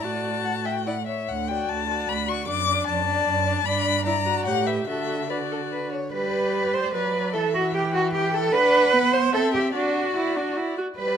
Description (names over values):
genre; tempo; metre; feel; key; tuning
quick classical-period movement for string quartet; 148 BPM; 3/4; rubato; D major, G major from 6.1 s; A4 = 440 Hz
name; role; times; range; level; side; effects
warm violin; melody; 0.0-11.2 s; B4 to D6; -27 LUFS; left 10 dB; none
warm violin; second line; 0.0-11.2 s; F#4 to F#5; -28 LUFS; left 2 dB; none
rich viola; accompaniment; 0.0-11.2 s; E3 to G4; -28 LUFS; right 2 dB; none
rich cello; bass; 0.0-11.2 s; D2 to C5; -26 LUFS; right 6 dB; none
room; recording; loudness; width
light reverb; close, detailed microphones; -21 LUFS; side -8 dB against mid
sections
0.0-6.1 A section; 6.1-11.2 B section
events
none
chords
0.0 D/A; 0.9 A; 1.3 D; 2.5 D/F#; 3.7 G; 4.1 Em7b5/G; 4.5 A7; 4.9 D; 6.1 G; 7.3 Em; 8.5 Bm/D; 9.3 C; 9.7 D